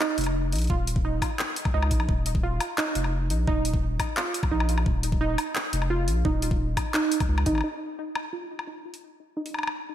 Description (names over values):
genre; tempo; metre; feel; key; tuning
half-time drum and bass; 173 BPM; 4/4; half-time; unclear; A4 = 440 Hz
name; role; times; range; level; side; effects
warbly dusty pluck; arpeggios; 0.0-9.9 s; Eb4 to F4; -30 LUFS; right 3 dB; chorus, ping-pong delay
drum and bass drum kit; drums; 0.0-9.7 s; handclaps, hi-hat, woodblock; -30 LUFS; left 1 dB; overdrive, studio reverb
saturated sub bass; bass; 0.2-7.6 s; Eb1 to Db2; -26 LUFS; equal; none
electronic kick drum; drums; 0.7-7.5 s; none; -27 LUFS; equal; overdrive, studio reverb
room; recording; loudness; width
moderate lush hall reverb, RT60 1.9 s, digital ambience; dreamy mix soaked in reverb; -24 LUFS; side -11 dB against mid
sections
0.0-7.6 A section; 7.6-9.9 B section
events
filter sweep on synth pluck 7.6-9.9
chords
0.0 Ebsus2; 7.6 N.C.